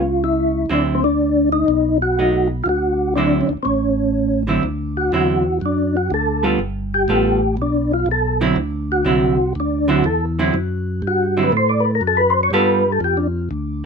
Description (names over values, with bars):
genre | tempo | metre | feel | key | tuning
soul jazz organ trio | 122 BPM | 4/4 | swing 67% on 8ths | D mixolydian | A4 = 438 Hz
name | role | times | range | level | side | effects
percussive tonewheel organ | melody | 0.0-13.3 s | C4 to D5 | -17 LUFS | left 1 dB | slow rotary speaker, overdrive, chorus vibrato
tonewheel organ | bass | 0.0-13.9 s | G1 to A2 | -22 LUFS | equal | overdrive, slow rotary speaker
vintage hollow-body jazz guitar | accompaniment | 0.7-12.8 s | D3 to A4 | -19 LUFS | right 3 dB | none
room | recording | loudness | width
light reverb | minimal, uncompressed stereo recording | -16 LUFS | side -5 dB against mid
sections
0.0-4.6 A section; 4.6-13.9 B section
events
tonewheel organ solo 4.6-13.9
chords
0.0 A (rootless); 0.7 D9; 1.7 B7; 2.7 D9; 3.7 A; 4.6 D9; 6.6 G9; 8.6 D9; 12.5 G9